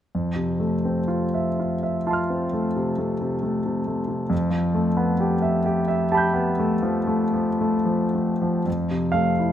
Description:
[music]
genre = classical, impressionist solo piano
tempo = 36-46 BPM (dotted quarters)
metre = 9/8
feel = rubato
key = unclear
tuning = A4 = 439 Hz
[part]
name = clear concert grand piano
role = solo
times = 0.1-9.5 s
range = F2 to G6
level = -21 LUFS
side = equal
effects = none
[sound]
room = moderate scoring stage reverb, RT60 2.0 s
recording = close, detailed microphones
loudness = -21 LUFS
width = side -10 dB against mid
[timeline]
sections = 0.1-8.7 A section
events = none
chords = 0.1 Fmaj7; 4.3 G13/F; 8.7 Fmaj7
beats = | 0.13 1.57 2.98 | 4.32 5.67 7.09 | 8.66

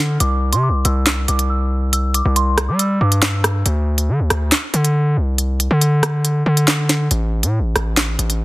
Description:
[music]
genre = hip hop, drill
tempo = 139 BPM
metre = 4/4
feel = half-time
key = unclear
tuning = A4 = 442 Hz
[part]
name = glassy synth bell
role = melody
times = 0.0-3.6 s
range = C6 to F6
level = -23 LUFS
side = right 1 dB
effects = chorus, low-pass filter
[part]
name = hard-hitting 808-style bass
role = bass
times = 0.0-8.4 s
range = A1 to G3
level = -16 LUFS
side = equal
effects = none
[part]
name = drill drum kit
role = drums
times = 0.2-8.4 s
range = handclaps, hi-hat, rim click, snare drum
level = -18 LUFS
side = equal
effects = none
[sound]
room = little or no reverb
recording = dense, heavily limited modern master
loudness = -15 LUFS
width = side -19 dB against mid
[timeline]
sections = 0.0-8.4 A section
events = none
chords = 0.2 C; 3.7 Csus2; 7.1 N.C.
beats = | 0.20 0.64 1.07 1.50 | 1.93 2.36 2.79 3.23 | 3.66 4.09 4.52 4.95 | 5.38 5.82 6.25 6.68 | 7.11 7.54 7.97 8.40

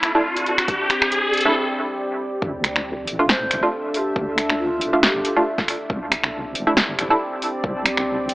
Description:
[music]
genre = deep dubstep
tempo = 138 BPM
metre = 4/4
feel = swing 54% on 16ths, half-time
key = unclear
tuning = A4 = 440 Hz
[part]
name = deep dark ambient pad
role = sustained chords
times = 0.2-8.3 s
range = C4 to E5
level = -26 LUFS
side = equal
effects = chorus, built-in reverb
[part]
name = deep house drum kit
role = drums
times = 0.0-8.3 s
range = finger snaps, hi-hat, snare drum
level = -21 LUFS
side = equal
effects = overdrive
[part]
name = riser and sub drop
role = sound effects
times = 0.0-4.2 s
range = none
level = -22 LUFS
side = equal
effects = none
[part]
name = filtered dub chord stab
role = stabs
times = 0.1-7.2 s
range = A3 to F4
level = -22 LUFS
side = right 1 dB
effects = analog chorus, dub echo
[part]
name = electronic kick drum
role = drums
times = 0.7-7.7 s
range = none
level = -25 LUFS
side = equal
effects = overdrive
[part]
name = deep soft wobble bass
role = bass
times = 2.4-8.3 s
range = G1 to D2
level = -31 LUFS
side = equal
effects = chorus
[part]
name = breathy mellow ney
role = melody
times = 3.3-5.5 s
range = F4 to C5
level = -27 LUFS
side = equal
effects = dub echo
[sound]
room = wet spring reverb, RT60 1.9 s, digital ambience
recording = AM radio sound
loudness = -18 LUFS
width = side -19 dB against mid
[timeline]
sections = 0.0-2.4 A section; 2.4-8.3 B section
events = build-up 0.0-2.4; riser 0.0-1.6; filter sweep on ambient pad 0.0-2.4; break 1.6-2.4; drop 2.4-8.3; impact 2.4-4.2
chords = 0.0 C5; 2.4 D5; 5.9 C5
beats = 0.25 | 0.68 1.12 1.55 1.99 | 2.42 2.86 3.29 3.73 | 4.16 4.59 5.03 5.46 | 5.90 6.33 6.77 7.20 | 7.64 8.07

